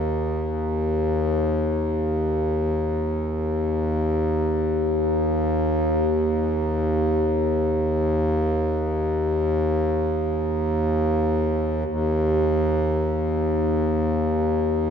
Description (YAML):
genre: world meditative, free-time meditation music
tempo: free time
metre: none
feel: none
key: unclear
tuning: A4 = 440 Hz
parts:
  - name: hand-pumped harmonium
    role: solo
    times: 0.0-14.9 s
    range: Eb2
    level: -20 LUFS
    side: equal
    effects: tape echo
room: wet huge ambient reverb, RT60 6.3 s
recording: dark, warm production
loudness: -21 LUFS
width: side -7 dB against mid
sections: 0.0-14.9 A section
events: none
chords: none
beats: free time